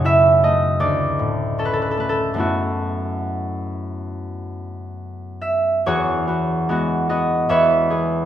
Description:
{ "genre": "classical, solo harp piece", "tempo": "65-82 BPM", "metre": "4/4", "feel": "rubato", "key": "F# minor", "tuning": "A4 = 440 Hz", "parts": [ { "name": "concert harp", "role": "solo", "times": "0.0-8.3 s", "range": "D2 to E5", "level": "-18 LUFS", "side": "right 1 dB", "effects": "none" } ], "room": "moderate recital hall reverb, RT60 1.3 s", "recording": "minimal, uncompressed stereo recording", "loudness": "-17 LUFS", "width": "side -11 dB against mid", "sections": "0.0-5.8 A section; 5.8-8.3 B section", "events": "none", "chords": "0.0 F#m7; 0.8 Dmaj7; 2.4 F#m7; 5.8 Eadd9; 7.5 Amaj9/E (rootless)" }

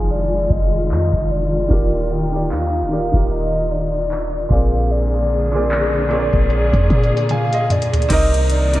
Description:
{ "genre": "contemporary R&B", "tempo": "75 BPM", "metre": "4/4", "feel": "swing 58% on 16ths", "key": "unclear", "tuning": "A4 = 441 Hz", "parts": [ { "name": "hollow clarinet-like synth lead", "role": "melody", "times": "0.0-8.8 s", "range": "D5 to Ab5", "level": "-22 LUFS", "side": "equal", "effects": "chorus" }, { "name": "bright concert grand piano", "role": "accompaniment", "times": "0.0-8.8 s", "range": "Bb2 to Ab5", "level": "-24 LUFS", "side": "right 2 dB", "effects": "none" }, { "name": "warm studio string section", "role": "sustained chords", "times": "0.0-8.8 s", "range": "D3 to Ab4", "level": "-24 LUFS", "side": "left 2 dB", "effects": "none" }, { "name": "clean 808-style bass", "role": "bass", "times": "0.0-8.8 s", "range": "Eb1 to Bb2", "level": "-20 LUFS", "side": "equal", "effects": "none" }, { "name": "booming analog drum machine", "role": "drums", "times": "0.1-8.8 s", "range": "crash cymbal, handclaps, hi-hat, kick drum, toms", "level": "-20 LUFS", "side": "equal", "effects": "overdrive, vintage 12-bit sampler grit, gated reverb" } ], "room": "light reverb, digital ambience", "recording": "bright 1980s-style digital production, low-pass filter", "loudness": "-15 LUFS", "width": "side -16 dB against mid", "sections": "0.0-8.1 A section", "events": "filter sweep 0.0-8.1; grand piano fill 6.9-8.1; drum fill 7.3-8.1", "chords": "0.0 Fm9; 1.7 Ebmaj7; 4.5 Bb7; 8.1 Cm9" }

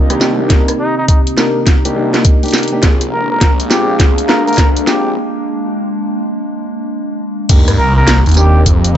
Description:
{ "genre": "glitch hop", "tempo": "103 BPM", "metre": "4/4", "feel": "swing 63% on 16ths", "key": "C minor", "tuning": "A4 = 440 Hz", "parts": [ { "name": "warbly tape-like pad", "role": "sustained chords", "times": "0.1-9.0 s", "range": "C3 to D4", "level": "-21 LUFS", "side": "left 1 dB", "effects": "chorus, built-in reverb, sidechain pumping" }, { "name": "dark concert grand piano", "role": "stabs", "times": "0.0-8.6 s", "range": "Bb3 to Bb4", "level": "-19 LUFS", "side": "left 1 dB", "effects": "vintage 12-bit sampler grit, sidechain pumping, tape echo" }, { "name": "phased detuned saw bass", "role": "bass", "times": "0.0-9.0 s", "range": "Bb1 to G2", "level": "-15 LUFS", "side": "equal", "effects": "phaser, overdrive, high-pass filter" }, { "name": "warbly tape-like pad", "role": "texture", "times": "0.0-9.0 s", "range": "C4 to Bb5", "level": "-22 LUFS", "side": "right 1 dB", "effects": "chorus, built-in reverb, sidechain pumping" }, { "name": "drum and bass drum kit", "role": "drums", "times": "0.1-8.9 s", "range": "crash cymbal, hi-hat, rim click, snare drum, tambourine", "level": "-16 LUFS", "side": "equal", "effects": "none" }, { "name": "electronic kick drum", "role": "drums", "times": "0.5-8.8 s", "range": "none", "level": "-10 LUFS", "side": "equal", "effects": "none" }, { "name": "dark trumpet", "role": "melody", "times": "0.8-9.0 s", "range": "Eb4 to Bb4", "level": "-18 LUFS", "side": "equal", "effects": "vintage 12-bit sampler grit, tape echo" }, { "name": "sub drop", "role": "sound effects", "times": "7.6-9.0 s", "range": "none", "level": "-19 LUFS", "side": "equal", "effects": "none" } ], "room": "light reverb", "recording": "nothing above 7.9 kHz", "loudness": "-10 LUFS", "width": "side -10 dB against mid", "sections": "0.0-7.5 A section; 7.5-9.0 B section", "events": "build-up 0.0-7.5; drum fill 0.0-5.2; break 5.2-7.5; drop 7.5-9.0; impact 7.5-9.0", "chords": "0.0 Cm7; 2.8 Bb7; 7.5 Cm7" }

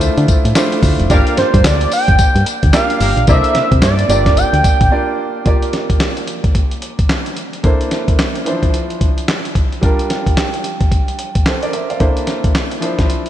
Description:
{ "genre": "R&B, new jack swing", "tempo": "110 BPM", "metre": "4/4", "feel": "swing 61% on 16ths", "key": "G dorian", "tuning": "A4 = 439 Hz", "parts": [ { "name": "clear baby grand piano", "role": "accompaniment", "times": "0.0-13.3 s", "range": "E3 to F5", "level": "-20 LUFS", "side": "right 1 dB", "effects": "slapback echo" }, { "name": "solid FM bass", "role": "bass", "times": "0.0-4.9 s", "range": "F1 to D3", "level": "-15 LUFS", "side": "equal", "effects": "none" }, { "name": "dusty soul sampler-style drum kit", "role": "drums", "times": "0.0-13.3 s", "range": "handclaps, hi-hat, kick drum, snare drum, tambourine", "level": "-14 LUFS", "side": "equal", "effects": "vintage 12-bit sampler grit" }, { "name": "warm horn section", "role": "stabs", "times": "1.1-3.5 s", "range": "G4 to F5", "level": "-25 LUFS", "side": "left 2 dB", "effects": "slapback echo" }, { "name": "octave-doubled lead", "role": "melody", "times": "1.4-5.2 s", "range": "C5 to G5", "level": "-17 LUFS", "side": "right 2 dB", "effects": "chorus, slapback echo" } ], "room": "moderate lush hall reverb, RT60 3.0 s", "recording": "big arena sound", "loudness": "-12 LUFS", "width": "side -11 dB against mid", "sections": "0.0-5.5 A section; 5.5-13.3 B section", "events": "break 4.9-5.5, 13.1", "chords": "0.0 Dm9; 1.1 Gm7; 3.3 C13; 4.1 Gm7; 7.6 C13; 8.5 Dm9; 9.8 Gm7; 12.0 C13" }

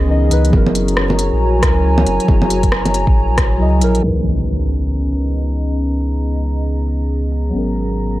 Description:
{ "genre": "future garage", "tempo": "137 BPM", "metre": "4/4", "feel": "swing 60% on 16ths", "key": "C# dorian", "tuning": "A4 = 439 Hz", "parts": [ { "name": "muted felt-like synth keys", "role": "accompaniment", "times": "0.0-8.2 s", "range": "E3 to D#5", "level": "-21 LUFS", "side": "left 1 dB", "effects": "chorus, sidechain pumping, low-pass filter, analog delay" }, { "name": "dark analog pad", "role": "sustained chords", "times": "0.0-8.2 s", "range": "G#3 to A#5", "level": "-21 LUFS", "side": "right 1 dB", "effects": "chorus, sidechain pumping" }, { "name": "warm sub bass", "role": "bass", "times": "0.0-8.2 s", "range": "F#1 to C#2", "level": "-17 LUFS", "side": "equal", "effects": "sidechain pumping" }, { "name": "organic electronic drum kit", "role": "drums", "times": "0.3-8.2 s", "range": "bongos, hi-hat, rim click", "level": "-20 LUFS", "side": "right 1 dB", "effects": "none" }, { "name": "electronic kick drum", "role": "drums", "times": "0.5-3.5 s", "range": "none", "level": "-15 LUFS", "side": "equal", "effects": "none" }, { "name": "impact", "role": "sound effects", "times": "4.0-5.8 s", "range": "none", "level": "-22 LUFS", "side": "equal", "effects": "none" }, { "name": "drifting glass-harmonics texture", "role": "texture", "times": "4.7-8.2 s", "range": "A#5", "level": "-38 LUFS", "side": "right 2 dB", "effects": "chorus, built-in reverb" } ], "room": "light reverb, digital ambience", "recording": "vinyl crackle, low-pass filter", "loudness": "-13 LUFS", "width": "side -16 dB against mid", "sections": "0.0-4.0 A section; 4.0-8.2 B section", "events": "impact 4.0-5.8; filter sweep on synth keys 4.0-8.2", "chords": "0.0 C#m9; 0.5 F#7; 4.0 C#m9; 7.5 G#m11" }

